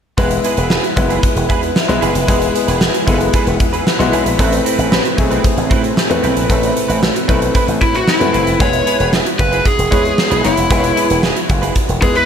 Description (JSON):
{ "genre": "1980s-style pop", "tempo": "114 BPM", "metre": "4/4", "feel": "straight", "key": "E major", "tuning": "A4 = 440 Hz", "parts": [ { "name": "bright concert grand piano", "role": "accompaniment", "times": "0.2-12.3 s", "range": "G#3 to C#5", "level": "-19 LUFS", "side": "left 4 dB", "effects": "none" }, { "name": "string machine, full ensemble", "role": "sustained chords", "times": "0.2-8.6 s", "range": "G#3 to B4", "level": "-22 LUFS", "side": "equal", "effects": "phaser, ensemble chorus" }, { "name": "direct-recorded clean electric guitar", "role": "riff", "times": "0.2-12.2 s", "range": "C4 to B4", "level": "-22 LUFS", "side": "right 6 dB", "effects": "ensemble chorus, digital delay" }, { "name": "slap bass with an envelope filter", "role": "bass", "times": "0.2-12.2 s", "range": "E1 to A2", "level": "-20 LUFS", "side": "equal", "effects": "none" }, { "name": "big rock drum kit", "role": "drums", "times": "0.2-12.3 s", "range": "hi-hat, kick drum, snare drum", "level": "-16 LUFS", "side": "equal", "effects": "none" }, { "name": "lead guitar through a small cranked amp", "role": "melody", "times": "7.8-12.3 s", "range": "E4 to C#5", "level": "-16 LUFS", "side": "equal", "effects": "overdrive, digital delay" } ], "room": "light reverb, small room ambience", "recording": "none", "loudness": "-12 LUFS", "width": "side -8 dB against mid", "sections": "0.2-8.6 A section; 8.6-12.3 B section", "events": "none", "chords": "0.2 E; 4.4 Amadd9; 8.6 E" }